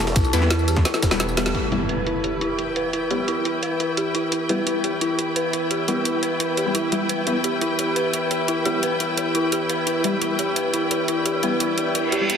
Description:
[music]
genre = dark technical drum and bass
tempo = 173 BPM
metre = 4/4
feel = straight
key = E minor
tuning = A4 = 441 Hz
[part]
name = deep dark ambient pad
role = sustained chords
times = 0.0-12.4 s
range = E4 to A5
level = -32 LUFS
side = left 3 dB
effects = chorus, built-in reverb, sidechain pumping
[part]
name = dark detuned synth bell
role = arpeggios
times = 0.0-12.4 s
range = E4 to B4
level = -24 LUFS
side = right 1 dB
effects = chorus, phaser, vintage 12-bit sampler grit, sidechain pumping, low-pass filter, ping-pong delay
[part]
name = jungle sampler-style drum kit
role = drums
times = 0.1-1.5 s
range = ride cymbal, snare drum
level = -32 LUFS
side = equal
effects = none
[part]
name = phased detuned saw bass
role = bass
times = 0.2-1.5 s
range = E1 to E2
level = -22 LUFS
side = equal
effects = phaser, overdrive
[part]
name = drum and bass drum kit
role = drums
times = 0.2-12.4 s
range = hi-hat, snare drum, tambourine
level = -25 LUFS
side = right 1 dB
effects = low-pass filter on hats, low-pass filter on perc, low-pass filter on snare, low-pass filter on room
[part]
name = electronic kick drum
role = drums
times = 0.2-1.1 s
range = none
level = -20 LUFS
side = equal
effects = overdrive
[part]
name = orchestra-hit-like synth stab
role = stabs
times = 0.3-12.3 s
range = G3 to E4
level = -27 LUFS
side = left 2 dB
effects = built-in reverb, ping-pong delay
[part]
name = impact and reverse cymbal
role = sound effects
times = 1.5-2.9, 12.0-12.4 s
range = none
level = -27 LUFS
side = equal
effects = none
[part]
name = rich studio string section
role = texture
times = 1.5-12.4 s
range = E4 to G5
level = -26 LUFS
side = left 2 dB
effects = sidechain pumping
[sound]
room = wet lush hall reverb, RT60 2.0 s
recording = heavily compressed radio sound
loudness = -20 LUFS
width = side -7 dB against mid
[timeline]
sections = 0.0-1.5 A section; 1.5-12.4 B section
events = drop 0.0-1.5; drum fill 0.9-1.5; band accent 1.5; impact 1.5-2.9; reverse cymbal 12.0-12.4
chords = 0.0 Em

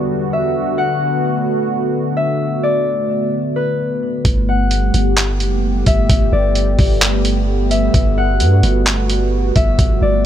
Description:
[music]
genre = hip hop, atmospheric cloud-rap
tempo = 130 BPM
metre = 4/4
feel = half-time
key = G major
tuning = A4 = 439 Hz
[part]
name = concert harp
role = melody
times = 0.0-10.3 s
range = B4 to F#5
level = -21 LUFS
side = left 4 dB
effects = ping-pong delay
[part]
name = dark analog pad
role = sustained chords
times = 0.0-10.3 s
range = E2 to G4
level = -19 LUFS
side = right 1 dB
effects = chorus, sidechain pumping
[part]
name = long sustained 808-style bass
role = bass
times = 4.2-10.3 s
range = F#1 to G2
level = -16 LUFS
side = equal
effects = none
[part]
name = trip hop sampler-style drum kit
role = drums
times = 4.2-9.9 s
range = handclaps, hi-hat, kick drum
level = -16 LUFS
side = equal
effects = none
[sound]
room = light reverb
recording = none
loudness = -13 LUFS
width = side -10 dB against mid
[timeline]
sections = 0.0-10.3 A section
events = none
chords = 0.0 Em9; 0.6 Bm7; 4.2 Gmaj9

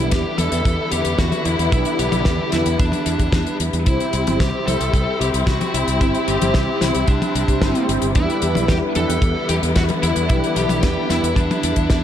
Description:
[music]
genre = italo disco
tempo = 112 BPM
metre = 4/4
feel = straight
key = E minor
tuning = A4 = 440 Hz
[part]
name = fuzz lead guitar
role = melody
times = 0.0-12.0 s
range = D4 to A4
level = -24 LUFS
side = left 1 dB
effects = distortion, analog delay
[part]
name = warm studio string section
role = sustained chords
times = 0.0-12.0 s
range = D3 to E4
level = -23 LUFS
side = left 2 dB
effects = none
[part]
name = mellow synth brass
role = stabs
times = 0.0-11.3 s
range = C4 to C5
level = -26 LUFS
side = right 3 dB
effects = chorus, analog delay
[part]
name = fingered electric bass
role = bass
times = 0.0-12.0 s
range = G1 to E2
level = -23 LUFS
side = equal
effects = none
[part]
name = damped 70s drum kit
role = drums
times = 0.1-12.0 s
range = hi-hat, snare drum, toms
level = -25 LUFS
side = left 2 dB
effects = studio reverb
[part]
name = kick drum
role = drums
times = 0.1-12.0 s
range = none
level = -19 LUFS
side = equal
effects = studio reverb
[sound]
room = moderate plate reverb, RT60 2.0 s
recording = dreamy mix soaked in reverb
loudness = -16 LUFS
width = side -10 dB against mid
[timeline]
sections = 0.0-12.0 A section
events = none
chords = 0.0 Em7; 3.9 C; 8.2 Em7

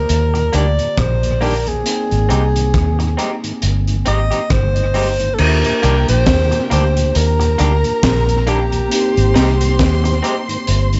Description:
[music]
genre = lovers rock reggae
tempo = 68 BPM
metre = 4/4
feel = swing 57% on 16ths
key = Eb major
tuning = A4 = 440 Hz
[part]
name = breathy alto saxophone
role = melody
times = 0.0-10.2 s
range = G4 to Eb5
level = -22 LUFS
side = equal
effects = tape echo
[part]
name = mellow tine electric piano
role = accompaniment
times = 0.0-11.0 s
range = D3 to G5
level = -28 LUFS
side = equal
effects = subtle chorus, tape echo
[part]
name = vintage muted fingered electric bass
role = bass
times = 0.0-11.0 s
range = G1 to Eb2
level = -18 LUFS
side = equal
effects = none
[part]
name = crunchy breakbeat drum kit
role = drums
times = 0.1-11.0 s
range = crash cymbal, hi-hat, kick drum, rim click, snare drum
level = -23 LUFS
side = equal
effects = tape echo
[part]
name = mellow tonewheel organ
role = accompaniment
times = 0.3-11.0 s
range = Eb2 to G4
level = -30 LUFS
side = equal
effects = none
[part]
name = electric guitar through a small old amp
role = stabs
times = 0.3-10.4 s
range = Bb3 to G4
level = -26 LUFS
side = equal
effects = none
[part]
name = warm studio string section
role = second line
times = 5.4-11.0 s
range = G4 to C6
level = -29 LUFS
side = equal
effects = tape echo
[sound]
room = light reverb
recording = nothing above 7.9 kHz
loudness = -16 LUFS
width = mono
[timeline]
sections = 0.0-5.4 A section; 5.4-11.0 B section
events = none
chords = 0.0 Ebmaj7; 1.9 Abmaj7; 5.4 Ebmaj7; 8.9 Abmaj7

